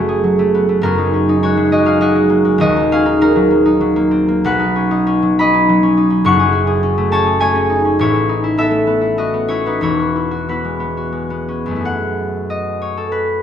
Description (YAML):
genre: classical, solo harp piece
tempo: 78-110 BPM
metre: 3/4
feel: rubato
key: F# dorian from 4.4 s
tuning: A4 = 440 Hz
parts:
  - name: concert harp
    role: solo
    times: 0.0-13.4 s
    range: D#1 to C#6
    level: -13 LUFS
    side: equal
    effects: none
room: moderate recital hall reverb, RT60 1.3 s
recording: none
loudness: -13 LUFS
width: side -9 dB against mid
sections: 0.0-11.9 A section; 11.9-13.4 B section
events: none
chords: 0.0 F#madd9; 0.9 F#69; 2.6 D#madd9; 4.4 Badd9; 6.2 F#madd9; 8.0 Aadd9; 9.8 Eadd9; 11.9 F#m9